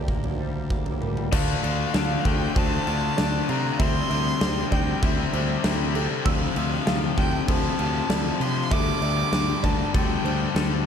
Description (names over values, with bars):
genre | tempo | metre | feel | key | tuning
post-rock | 98 BPM | 4/4 | straight | D minor | A4 = 440 Hz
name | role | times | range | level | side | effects
dark violin | melody | 0.0-10.8 s | D5 to D6 | -31 LUFS | right 5 dB | tape echo
rich symphonic string section | sustained chords | 0.0-10.9 s | D3 to A5 | -37 LUFS | right 3 dB | none
felt-muted upright piano | arpeggios | 0.0-10.9 s | A4 to E6 | -36 LUFS | right 8 dB | tape echo
twangy electric guitar | arpeggios | 0.0-10.9 s | D3 to A4 | -36 LUFS | left 2 dB | none
fuzz fingered electric bass | bass | 0.0-10.9 s | D2 to C3 | -28 LUFS | equal | overdrive
huge arena drum kit | drums | 0.1-10.7 s | crash cymbal, kick drum, snare drum, toms | -26 LUFS | equal | none
cranked stack guitar | riff | 1.3-10.9 s | F2 to D4 | -27 LUFS | left 14 dB | overdrive
room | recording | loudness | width
studio ambience | dark, warm production | -21 LUFS | side -8 dB against mid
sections
0.0-1.3 A section; 1.3-10.9 B section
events
none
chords
0.0 Gmadd9/D; 1.3 Dm7; 3.8 C/D; 6.3 Fmaj7/D; 8.7 Gmadd9/D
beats
0.08 0.70 | 1.32 1.94 2.56 3.17 | 3.79 4.41 5.02 5.64 | 6.25 6.87 7.48 8.10 | 8.71 9.33 9.94 10.55